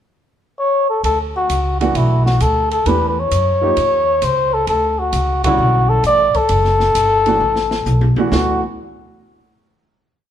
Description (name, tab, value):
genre	jazz, small-group swing and bop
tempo	132 BPM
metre	4/4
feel	swing 68% on 8ths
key	D major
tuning	A4 = 439 Hz
part	trumpet with cup mute	melody	0.6-8.6 s	E4 to D5	-15 LUFS	left 2 dB	none
part	upright bass	bass	1.0-8.6 s	F#1 to F#2	-18 LUFS	equal	none
part	open jazz drum kit	drums	1.0-8.5 s	hi-hat, kick drum, ride cymbal, snare drum, toms	-27 LUFS	equal	none
part	clear grand piano	accompaniment	1.8-8.6 s	D3 to G4	-21 LUFS	right 4 dB	none
room	moderate large studio reverb, RT60 1.4 s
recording	band playing live in one room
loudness	-13 LUFS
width	side -10 dB against mid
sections	0.0-1.0 pickup bar; 1.0-8.3 A section; 8.3-10.2 final chord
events	band accent 5.4; drum fill 7.4-8.3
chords	0.0 N.C.; 1.0 D; 2.0 Bm7; 2.9 Em9; 3.8 C#sus2; 4.7 D6; 8.3 D